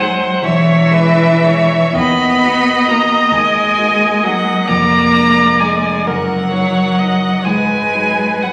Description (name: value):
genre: classical, slow romantic movement for piano quartet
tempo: 38-46 BPM (dotted quarters)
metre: 6/8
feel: rubato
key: unclear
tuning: A4 = 444 Hz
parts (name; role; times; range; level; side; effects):
- rich violin; melody; 0.0-8.5 s; E5 to B5; -19 LUFS; equal; none
- rich cello; second line; 0.0-8.5 s; E3 to B3; -18 LUFS; equal; none
- warm concert grand piano; accompaniment; 0.0-8.5 s; E1 to C5; -22 LUFS; equal; none
- warm viola; accompaniment; 0.0-8.5 s; A#4 to D#5; -18 LUFS; equal; none
room: wet recital hall reverb, RT60 1.8 s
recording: vinyl crackle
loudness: -13 LUFS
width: mono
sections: 0.0-8.5 A section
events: none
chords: 0.4 C#m/E; 1.9 D#m; 4.7 Ddim/F; 6.1 D#m/F#; 7.5 G#m7